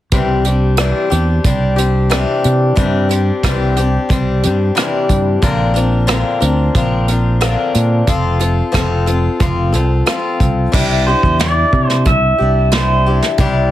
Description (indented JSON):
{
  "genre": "folk rock and heartland rock",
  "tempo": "90 BPM",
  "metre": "4/4",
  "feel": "straight",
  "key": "C mixolydian",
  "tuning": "A4 = 435 Hz",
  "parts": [
    { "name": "picked swing-style acoustic guitar", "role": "accompaniment", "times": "0.1-13.7 s", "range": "Bb2 to Bb4", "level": "-17 LUFS", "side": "left 4 dB", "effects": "none" },
    { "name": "fingered electric bass", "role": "bass", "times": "0.1-13.7 s", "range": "F1 to C3", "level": "-15 LUFS", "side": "right 1 dB", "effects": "none" },
    { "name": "soft brush drum kit", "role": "drums", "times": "0.1-13.5 s", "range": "crash cymbal, hi-hat, kick drum, rim click, snare drum", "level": "-18 LUFS", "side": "right 1 dB", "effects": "none" },
    { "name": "pedal steel guitar", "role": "melody", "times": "11.1-13.2 s", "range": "C5 to E5", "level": "-16 LUFS", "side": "right 2 dB", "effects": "none" }
  ],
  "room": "light reverb",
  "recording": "heavily compressed radio sound",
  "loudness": "-12 LUFS",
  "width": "side -13 dB against mid",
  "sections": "0.1-10.7 A section; 10.7-13.7 B section",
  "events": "none",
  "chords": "0.1 Cadd9; 5.4 Bbadd9; 8.1 F; 10.7 Cadd9"
}